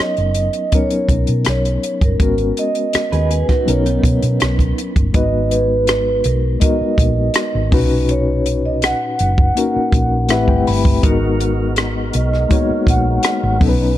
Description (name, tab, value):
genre	lush 1970s-style soul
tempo	82 BPM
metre	4/4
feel	straight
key	unclear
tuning	A4 = 440 Hz
part	vibraphone with soft mallets	melody	0.0-13.6 s	A#4 to F#5	-20 LUFS	right 2 dB	slapback echo
part	mellow reed electric piano	accompaniment	0.0-14.0 s	A#2 to B5	-20 LUFS	left 4 dB	fast tremolo
part	hollow-body short-scale fingered electric bass	bass	0.0-14.0 s	F#1 to B2	-18 LUFS	equal	none
part	compact cocktail drum kit	drums	0.0-13.8 s	hi-hat, kick drum, rim click	-17 LUFS	equal	none
part	electric guitar through a small old amp	riff	3.1-4.9 s	B3 to B4	-26 LUFS	right 7 dB	tremolo
part	percussive tonewheel organ	sustained chords	11.0-14.0 s	G#3 to A#4	-27 LUFS	right 2 dB	overdrive, chorus vibrato, slow rotary speaker
room	small room ambience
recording	dark, warm production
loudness	-14 LUFS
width	side -13 dB against mid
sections	0.0-5.1 A section; 5.1-14.0 B section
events	reed electric piano fill 9.9-11.0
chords	0.0 Bmaj9; 2.2 G#m11; 3.7 Bmaj9; 5.1 G#m9; 7.7 Bmaj9; 10.3 Am9; 11.0 G#m9